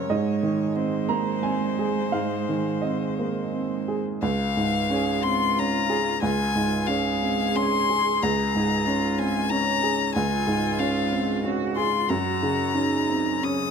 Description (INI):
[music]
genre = neoclassical piano and strings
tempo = 85-94 BPM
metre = 3/4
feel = rubato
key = Db major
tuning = A4 = 441 Hz
[part]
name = clear violin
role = melody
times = 0.0-13.7 s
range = C5 to Eb6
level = -26 LUFS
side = left 6 dB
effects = none
[part]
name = rich cello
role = second line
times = 0.0-13.7 s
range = Ab3 to Ab4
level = -30 LUFS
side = right 6 dB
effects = none
[part]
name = warm upright piano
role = accompaniment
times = 0.0-13.7 s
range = Db2 to Db6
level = -25 LUFS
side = right 2 dB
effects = none
[sound]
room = light reverb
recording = close, detailed microphones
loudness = -22 LUFS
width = side -6 dB against mid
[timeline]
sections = 0.0-4.2 A section; 4.2-13.7 B section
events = none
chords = 0.1 Ab; 4.2 Db; 12.1 Gb